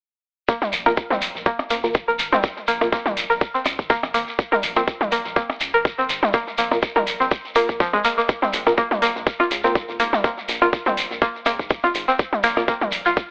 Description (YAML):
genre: minimal techno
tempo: 123 BPM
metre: 4/4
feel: swing 55% on 16ths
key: Bb minor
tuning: A4 = 439 Hz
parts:
  - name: string-like resonator pluck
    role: riff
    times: 0.5-13.1 s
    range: F3 to Bb4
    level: -24 LUFS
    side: equal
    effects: chorus, sidechain pumping, dub echo
  - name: electronic kick drum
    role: drums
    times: 0.5-13.3 s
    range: none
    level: -21 LUFS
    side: equal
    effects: none
  - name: shekere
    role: percussion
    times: 0.5-13.3 s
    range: none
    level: -30 LUFS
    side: equal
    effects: none
  - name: electronic toms and percussion blips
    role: percussion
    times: 0.6-12.9 s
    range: none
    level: -27 LUFS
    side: equal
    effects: tape echo
  - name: rubbery square bass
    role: bass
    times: 0.7-13.2 s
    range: F1 to Db2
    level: -40 LUFS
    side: equal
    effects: sidechain pumping
  - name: electronic hi-hat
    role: drums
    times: 0.7-13.0 s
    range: none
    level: -34 LUFS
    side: equal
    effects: overdrive
  - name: wavetable chord stab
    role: stabs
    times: 0.9-12.6 s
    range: Bb3 to Bb4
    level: -27 LUFS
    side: equal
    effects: cassette tape, tape echo
room: light reverb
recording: telephone sound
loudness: -21 LUFS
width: mono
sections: 0.5-13.3 A section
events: filter sweep on synth stab 0.5-13.3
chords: 0.5 Bb5